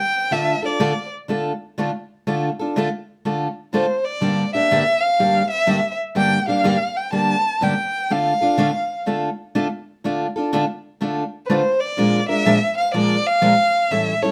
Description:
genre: jazz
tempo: 124 BPM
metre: 4/4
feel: swing 66% on 8ths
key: D minor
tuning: A4 = 440 Hz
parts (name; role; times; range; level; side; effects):
- warm violin; melody; 0.0-14.3 s; B4 to A5; -21 LUFS; equal; none
- picked steel-string acoustic guitar; accompaniment; 0.3-14.3 s; G2 to Bb4; -22 LUFS; equal; none
room: wet studio reverb, RT60 0.6 s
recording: dark, warm production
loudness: -20 LUFS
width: mono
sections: 0.0-14.3 A section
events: none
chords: 0.3 Dm; 4.2 Gm; 8.1 Dm; 12.0 Bb7

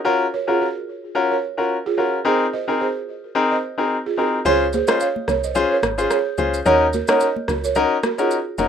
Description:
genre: afrobeats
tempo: 109 BPM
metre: 4/4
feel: swing 55% on 16ths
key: unclear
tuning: A4 = 438 Hz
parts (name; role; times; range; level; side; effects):
- bright concert grand piano; accompaniment; 0.0-8.7 s; C4 to C5; -19 LUFS; left 4 dB; none
- balafon; riff; 0.1-8.7 s; F4 to F5; -23 LUFS; right 7 dB; ping-pong delay
- deep log drum bass; bass; 4.5-8.7 s; F1 to Eb2; -27 LUFS; equal; none
- electronic shaker and rim click; drums; 4.5-8.7 s; none; -24 LUFS; right 1 dB; overdrive, vintage 12-bit sampler grit
- congas; percussion; 4.5-8.7 s; none; -30 LUFS; left 4 dB; none
room: moderate small room reverb, RT60 0.5 s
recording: rough home demo mix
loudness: -17 LUFS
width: side -8 dB against mid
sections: 0.0-4.5 A section; 4.5-8.7 B section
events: kick muted 4.5-8.7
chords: 0.1 Gbmaj7; 2.3 Abadd9; 4.5 Dbmaj7; 6.7 Ebm7

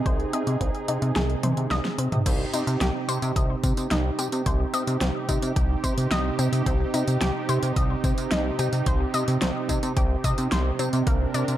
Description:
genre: synthwave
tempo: 109 BPM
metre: 4/4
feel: straight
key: C minor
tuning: A4 = 436 Hz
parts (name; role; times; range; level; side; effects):
- brassy analog pad; sustained chords; 0.0-11.6 s; C3 to Bb4; -29 LUFS; right 4 dB; chorus
- analog pluck; arpeggios; 0.1-11.6 s; Bb3 to Eb5; -30 LUFS; left 3 dB; chorus, digital delay
- chorused synth bass; bass; 0.1-11.6 s; C2 to C3; -26 LUFS; equal; none
- electronic kick drum; drums; 0.1-11.2 s; none; -26 LUFS; equal; overdrive
- pop drum kit; drums; 0.1-11.6 s; crash cymbal, hi-hat, snare drum, tambourine, toms; -30 LUFS; equal; overdrive
room: light reverb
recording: dark, warm production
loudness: -22 LUFS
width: side -12 dB against mid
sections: 0.0-2.3 A section; 2.3-11.6 B section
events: filter sweep on synth arpeggio sound 0.0-2.3; drum fill 1.4-2.3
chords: 0.0 Ab/C; 2.3 Cm; 11.1 Bb/C

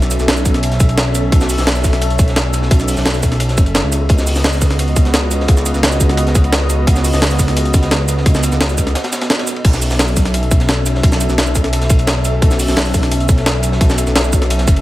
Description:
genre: liquid drum and bass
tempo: 173 BPM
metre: 4/4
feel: straight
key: B mixolydian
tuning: A4 = 440 Hz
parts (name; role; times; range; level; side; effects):
- warm analog pad; sustained chords; 0.0-14.8 s; B3 to E5; -22 LUFS; equal; chorus
- dark detuned saw bass; bass; 0.0-14.8 s; F#1 to C#2; -16 LUFS; equal; tube saturation
- jungle sampler-style drum kit; drums; 0.0-14.8 s; crash cymbal, hi-hat, shaker, snare drum; -18 LUFS; equal; overdrive
- crunchy breakbeat drum kit; drums; 0.1-14.8 s; hi-hat, ride cymbal, snare drum; -25 LUFS; equal; high-pass filter on cymbals, high-pass filter on hats, high-pass filter on snare, high-pass filter on room
- electronic kick drum; drums; 0.5-14.7 s; none; -12 LUFS; equal; none
room: little or no reverb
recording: none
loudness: -12 LUFS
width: side -16 dB against mid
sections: 0.0-9.6 A section; 9.6-14.8 A section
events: drop 0.0-9.6, 9.6-14.8; break 9.0-9.6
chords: 0.0 B9sus4; 3.9 C#9sus4; 9.6 B9sus4

